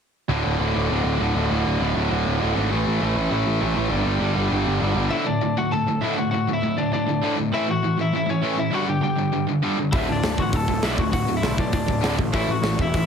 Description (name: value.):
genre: punk rock.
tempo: 199 BPM.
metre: 4/4.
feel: straight.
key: D major.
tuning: A4 = 440 Hz.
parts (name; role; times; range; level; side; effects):
sludgy distorted guitar; riff; 0.3-13.1 s; D2 to A3; -25 LUFS; right 10 dB; overdrive.
tight distorted guitar; riff; 0.3-13.1 s; D2 to A3; -26 LUFS; left 11 dB; distortion.
fuzz picked electric bass; bass; 0.3-5.1, 9.9-13.1 s; D1 to B1; -24 LUFS; equal; overdrive.
lightly driven lead guitar; melody; 5.1-13.1 s; C#4 to A5; -26 LUFS; left 4 dB; tape echo.
big rock drum kit; drums; 9.9-13.0 s; hi-hat, kick drum, snare drum; -25 LUFS; equal; none.
room: small room reverb.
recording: heavily compressed radio sound.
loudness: -20 LUFS.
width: side -7 dB against mid.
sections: 0.3-5.1 A section; 5.1-13.1 B section.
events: none.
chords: 0.3 D5; 2.7 A5; 3.9 G5; 5.1 D; 7.5 A; 8.7 G5; 9.9 D; 12.3 A5.